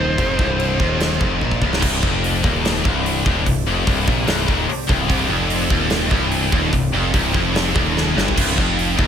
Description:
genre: hard rock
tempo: 147 BPM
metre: 4/4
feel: straight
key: C minor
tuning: A4 = 440 Hz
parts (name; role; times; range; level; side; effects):
- dark smooth lead guitar; melody; 0.0-1.4 s; C5; -24 LUFS; right 1 dB; overdrive
- analog string pad; sustained chords; 0.0-8.3 s; C4 to Eb5; -32 LUFS; equal; ensemble chorus, phaser
- scooped high-gain guitar; riff; 0.0-9.1 s; C2 to Bb2; -22 LUFS; left 10 dB; distortion
- tight distorted guitar; riff; 0.0-1.8, 5.1-9.1 s; C2 to Bb2; -24 LUFS; right 12 dB; distortion
- growling picked electric bass; bass; 0.0-9.1 s; C1 to Bb1; -24 LUFS; equal; overdrive
- huge arena drum kit; drums; 0.2-9.1 s; crash cymbal, hi-hat, kick drum, snare drum, toms; -21 LUFS; equal; none
- high-gain distorted guitar; riff; 1.8-9.1 s; C2 to Bb2; -22 LUFS; right 1 dB; distortion
room: light reverb, small room ambience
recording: none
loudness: -16 LUFS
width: side -8 dB against mid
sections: 0.0-1.8 A section; 1.8-8.4 B section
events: drum fill 1.4-1.8, 8.0-8.4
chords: 0.0 Cm

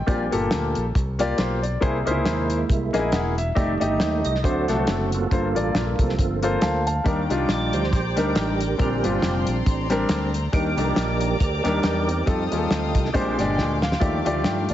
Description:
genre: uptempo gospel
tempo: 138 BPM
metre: 4/4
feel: swing 56% on 8ths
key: Bb major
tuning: A4 = 440 Hz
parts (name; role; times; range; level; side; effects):
- warm concert grand piano; accompaniment; 0.0-14.7 s; G2 to A5; -24 LUFS; left 2 dB; none
- percussive tonewheel organ; sustained chords; 0.1-14.7 s; D3 to Eb5; -28 LUFS; right 4 dB; slow rotary speaker, chorus vibrato
- fingered electric bass; bass; 0.1-14.7 s; E1 to G2; -26 LUFS; equal; none
- warm soul drum kit; drums; 0.1-14.7 s; hi-hat, kick drum, snare drum; -25 LUFS; equal; none
- rich studio string section; sustained chords; 7.0-14.7 s; D5 to Eb6; -34 LUFS; left 4 dB; none
room: light reverb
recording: heavily compressed radio sound, nothing above 7.8 kHz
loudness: -20 LUFS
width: side -12 dB against mid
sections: 0.0-14.7 A section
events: tonewheel organ solo 0.0-14.7; grand piano fill 6.4-7.1; drum fill 13.6-14.0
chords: 0.1 Bb6; 1.8 C7alt; 3.6 F13; 4.4 D7; 5.3 Gm11; 7.1 Ebmaj7; 8.8 Bb69; 10.5 Ebmaj7; 12.3 F9; 13.1 Bb13; 14.0 Ebmaj9#11

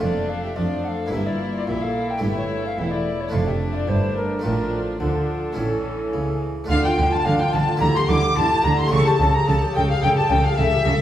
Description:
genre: classical, baroque-style concerto movement with solo episodes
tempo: 108 BPM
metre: 4/4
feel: straight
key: D minor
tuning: A4 = 442 Hz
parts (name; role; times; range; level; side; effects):
- dark chamber violin section; melody; 0.0-11.0 s; D4 to D6; -28 LUFS; left 3 dB; none
- mellow alto recorder; melody; 0.0-11.0 s; A4 to D6; -26 LUFS; left 2 dB; none
- warm chamber violin section; second line; 0.0-11.0 s; C#4 to D6; -29 LUFS; equal; none
- dark chamber viola section; accompaniment; 0.0-11.0 s; E3 to A4; -28 LUFS; left 1 dB; none
- harpsichord; accompaniment; 0.0-11.0 s; E2 to G4; -28 LUFS; right 2 dB; none
- rich chamber cello section; bass; 0.0-10.9 s; E2 to F3; -26 LUFS; right 1 dB; none
- rich chamber double bass section; bass; 0.0-10.9 s; E1 to F2; -25 LUFS; right 1 dB; none
room: wet recital hall reverb, RT60 1.4 s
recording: heard from further back in the room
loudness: -18 LUFS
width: side -11 dB against mid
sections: 0.0-6.7 A section; 6.7-11.0 B section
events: none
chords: 0.0 Dm/F; 1.1 Edim/G; 2.2 A5/G; 3.3 Dm/F; 4.4 Dm/A; 5.6 A; 6.7 Dm; 7.8 Em7b5/D; 8.9 A7/C#

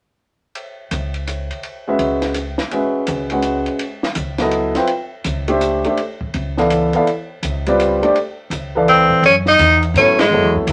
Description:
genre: modal jazz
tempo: 166 BPM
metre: 3/4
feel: swing 64% on 8ths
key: unclear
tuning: A4 = 441 Hz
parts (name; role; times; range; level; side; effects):
- compact cocktail drum kit; drums; 0.6-10.7 s; hi-hat, kick drum, ride cymbal, snare drum; -29 LUFS; equal; none
- upright bass; bass; 0.9-10.7 s; C#2 to G#2; -25 LUFS; equal; none
- clear baby grand piano; accompaniment; 1.9-10.7 s; E3 to G5; -19 LUFS; equal; none
- edgy tenor saxophone; melody; 8.9-10.6 s; G#3 to D#4; -14 LUFS; equal; none
room: moderate club reverb, RT60 0.5 s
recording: none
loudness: -17 LUFS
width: mono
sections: 0.6-9.2 A section; 9.2-10.7 B section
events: band accent 10.1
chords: 0.6 F#7sus2; 4.9 Dm9; 9.2 F#m9

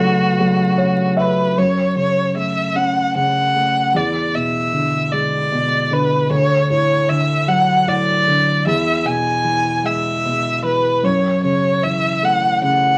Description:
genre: acoustic folk-pop ballad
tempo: 51 BPM (dotted quarters)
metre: 6/8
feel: straight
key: unclear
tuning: A4 = 439 Hz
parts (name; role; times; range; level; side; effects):
- felt-muted upright piano; melody; 0.0-13.0 s; C#2 to E5; -21 LUFS; equal; none
- rich violin; second line; 0.0-13.0 s; F#4 to G#5; -19 LUFS; equal; none
room: moderate studio reverb, RT60 0.6 s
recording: vinyl crackle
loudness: -17 LUFS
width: mono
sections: 0.0-1.6 A section; 1.6-13.0 B section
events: felt piano fill 0.4-1.6; violin solo 1.6-13.0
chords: 0.0 F#madd9; 1.6 F#m; 3.9 E7; 6.3 Dmaj7; 8.7 E; 11.0 F#m7

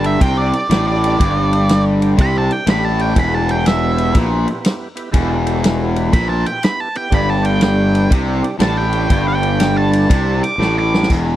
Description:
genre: blues rock power trio and southern rock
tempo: 121 BPM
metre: 4/4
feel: swing 66% on 8ths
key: unclear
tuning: A4 = 440 Hz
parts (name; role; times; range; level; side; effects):
- octave-fuzz lead guitar; melody; 0.0-11.1 s; D5 to D6; -20 LUFS; right 2 dB; distortion
- overdriven tonewheel organ; sustained chords; 0.0-11.1 s; G3 to E5; -28 LUFS; right 5 dB; slow rotary speaker, chorus vibrato
- overdriven electric guitar; riff; 0.0-11.4 s; E2 to C3; -18 LUFS; left 1 dB; spring reverb
- fuzz fingered electric bass; bass; 0.0-11.4 s; E1 to C2; -18 LUFS; equal; overdrive
- vintage drum kit; drums; 0.0-11.2 s; crash cymbal, kick drum, ride cymbal, snare drum; -16 LUFS; equal; none
room: little or no reverb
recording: dry, close 1970s-style studio recording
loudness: -13 LUFS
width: side -13 dB against mid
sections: 0.0-11.1 A section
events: lead electric guitar solo 0.0-11.1; drum fill 10.6-11.1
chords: 0.0 G5; 3.2 Em; 7.1 G5

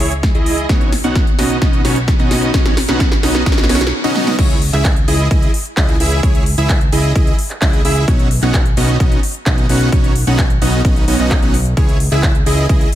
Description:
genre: EDM, festival progressive house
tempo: 130 BPM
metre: 4/4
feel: straight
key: C# minor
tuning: A4 = 440 Hz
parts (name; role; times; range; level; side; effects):
- dense compressed supersaw; riff; 0.0-12.9 s; B3 to F#5; -18 LUFS; right 1 dB; sidechain pumping, low-pass filter, dub echo
- fat analog bass; bass; 0.0-12.9 s; B1 to C#2; -18 LUFS; equal; sidechain pumping
- big-room dance drum kit; drums; 0.0-12.9 s; crash cymbal, handclaps, hi-hat, snare drum; -21 LUFS; equal; overdrive, small room ambience
- electronic kick drum; drums; 0.2-12.8 s; none; -14 LUFS; equal; overdrive, small room ambience
room: light reverb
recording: none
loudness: -12 LUFS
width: side -12 dB against mid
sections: 0.0-4.4 A section; 4.4-12.9 B section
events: build-up 0.0-4.4; drum fill 0.0-3.9, 4.2; break 3.9-4.4; drop 4.4-12.9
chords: 0.0 C#m; 0.7 Badd9; 4.4 C#m; 8.1 Badd9; 11.8 C#m

